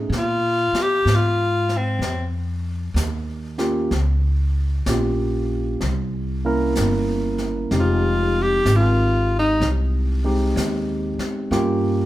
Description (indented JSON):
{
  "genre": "jazz ballad",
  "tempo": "63 BPM",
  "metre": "4/4",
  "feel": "swing 66% on 8ths",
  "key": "F minor",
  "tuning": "A4 = 440 Hz",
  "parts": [
    { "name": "barky tine electric piano", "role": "accompaniment", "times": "0.0-12.1 s", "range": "Ab3 to Bb4", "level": "-23 LUFS", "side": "right 1 dB", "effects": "none" },
    { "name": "upright bass", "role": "bass", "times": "0.0-12.1 s", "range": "F1 to Bb2", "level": "-21 LUFS", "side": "equal", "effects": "none" },
    { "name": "jazz brush drum kit", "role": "drums", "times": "0.1-12.1 s", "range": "brushed snare drum, hi-hat, snare drum", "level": "-32 LUFS", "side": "left 2 dB", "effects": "none" },
    { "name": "growling tenor saxophone", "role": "melody", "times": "0.2-9.7 s", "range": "C4 to G4", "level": "-20 LUFS", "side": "left 1 dB", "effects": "none" }
  ],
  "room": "light reverb",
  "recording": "band playing live in one room",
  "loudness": "-18 LUFS",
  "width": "side -15 dB against mid",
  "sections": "0.0-12.1 A section",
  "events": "tenor saxophone solo 0.0-12.1",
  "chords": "0.1 Bb7(no3); 3.9 Gm7b5; 5.8 C7b9; 7.7 Fm7; 11.5 Gm7b5"
}